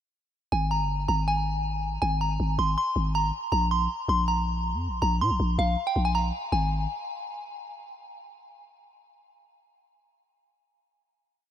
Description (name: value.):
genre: hip hop, trap.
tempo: 160 BPM.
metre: 4/4.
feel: half-time.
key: Ab major.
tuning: A4 = 437 Hz.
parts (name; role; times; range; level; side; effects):
delicate synth tine bell; melody; 0.5-6.7 s; F5 to C6; -27 LUFS; right 1 dB; chorus, diffuse ambient delay.
growling 808-style bass; bass; 0.5-6.9 s; G1 to Bb2; -26 LUFS; equal; none.
room: moderate huge ambient reverb, RT60 5.3 s.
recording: dreamy mix soaked in reverb.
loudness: -24 LUFS.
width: side -10 dB against mid.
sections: 0.5-6.5 hook; 6.5-8.0 final note.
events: none.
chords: 0.5 Absus2; 3.5 Bbsus2; 6.5 N.C..